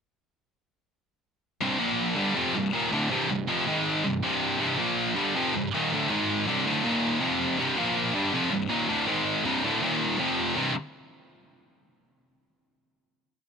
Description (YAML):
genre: metal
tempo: 161 BPM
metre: 4/4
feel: straight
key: C minor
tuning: A4 = 440 Hz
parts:
  - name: scooped high-gain guitar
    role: solo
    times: 1.6-10.7 s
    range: C2 to Bb3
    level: -24 LUFS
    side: equal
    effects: distortion
room: light reverb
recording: none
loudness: -24 LUFS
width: side -6 dB against mid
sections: 1.6-7.6 riff; 7.6-10.6 outro; 10.6-12.1 final chord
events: none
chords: 1.6 C5; 1.8 Bb5; 2.2 Cm; 3.7 Ab5; 4.0 C5; 4.8 Bb5; 5.2 Cm; 6.1 Ab5; 6.5 C5; 6.8 Eb5; 7.2 F5; 7.6 C5; 7.8 Bb5; 8.2 Cm; 9.1 Ab5; 9.5 C5; 9.8 Eb5; 10.2 F5; 10.6 C5